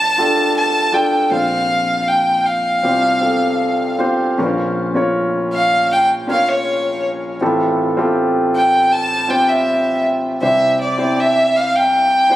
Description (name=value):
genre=pop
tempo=79 BPM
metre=4/4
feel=straight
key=unclear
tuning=A4 = 440 Hz
part: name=warm violin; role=melody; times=0.0-12.4 s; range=Db5 to A5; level=-15 LUFS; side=equal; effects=ping-pong delay
part: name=warm concert grand piano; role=accompaniment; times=0.0-12.4 s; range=G1 to Db5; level=-18 LUFS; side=equal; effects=none
room=light reverb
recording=recorded on a phone in the room, studio reverb, compression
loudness=-14 LUFS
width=side -14 dB against mid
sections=0.0-4.4 A section; 4.4-12.4 B section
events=none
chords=0.0 Gm7; 1.3 Bbsus2; 2.8 Csus4; 4.4 Bbmadd9; 7.4 Fadd9/A; 10.4 C